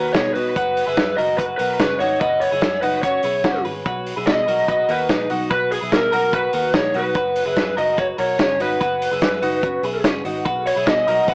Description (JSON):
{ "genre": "jangly indie pop", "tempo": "146 BPM", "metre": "4/4", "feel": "straight", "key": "B major", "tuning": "A4 = 440 Hz", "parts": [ { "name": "lead guitar through a small cranked amp", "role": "melody", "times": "0.0-11.3 s", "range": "G#4 to F#5", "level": "-22 LUFS", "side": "equal", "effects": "overdrive, plate reverb" }, { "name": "twelve-string electric guitar", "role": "arpeggios", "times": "0.0-11.3 s", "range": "C#4 to B4", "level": "-26 LUFS", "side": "equal", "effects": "plate reverb" }, { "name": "vintage muted picked electric bass", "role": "bass", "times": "0.0-11.3 s", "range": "F#1 to B2", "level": "-36 LUFS", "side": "equal", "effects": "none" }, { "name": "vintage drum kit", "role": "drums", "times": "0.1-11.3 s", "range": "hi-hat, kick drum, snare drum", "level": "-25 LUFS", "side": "equal", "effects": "none" } ], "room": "moderate studio reverb, RT60 0.7 s", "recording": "worn, warbling old tape, cassette tape, warbly pitch drift, small speaker sound", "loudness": "-20 LUFS", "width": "mono", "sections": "0.0-11.3 A section", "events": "none", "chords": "0.0 B; 0.6 F#sus4; 3.9 B; 7.2 F#sus4; 10.5 B", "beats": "0.15 | 0.56 0.97 1.39 1.80 | 2.21 2.62 3.04 3.45 | 3.86 4.27 4.68 5.10 | 5.51 5.92 6.33 6.75 | 7.16 7.57 7.98 8.39 | 8.81 9.22 9.63 10.04 | 10.46 10.87 11.28" }